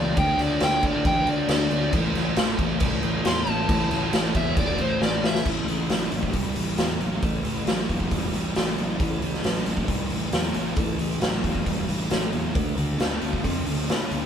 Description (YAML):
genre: blues rock power trio and southern rock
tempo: 135 BPM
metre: 4/4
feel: straight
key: A minor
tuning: A4 = 440 Hz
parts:
  - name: overdriven slide guitar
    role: melody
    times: 0.0-5.5 s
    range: C5 to C6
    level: -26 LUFS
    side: left 1 dB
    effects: none
  - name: thick fuzz guitar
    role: riff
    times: 0.0-14.3 s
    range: E2 to D4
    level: -27 LUFS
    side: equal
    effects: distortion
  - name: fuzz fingered electric bass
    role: bass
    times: 0.0-14.3 s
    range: E1 to A2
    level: -29 LUFS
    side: equal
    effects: overdrive
  - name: raw garage drum kit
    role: drums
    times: 0.2-14.2 s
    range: crash cymbal, hi-hat, kick drum, snare drum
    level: -25 LUFS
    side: equal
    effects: none
room: moderate studio reverb, RT60 0.8 s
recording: band playing live in one room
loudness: -22 LUFS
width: side -8 dB against mid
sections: 0.0-5.5 A section; 5.5-14.3 B section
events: electric slide guitar solo 0.0-5.5; drum fill 5.0-5.5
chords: 0.2 D5; 1.9 A5; 5.5 A7(no3); 12.6 D7(no3)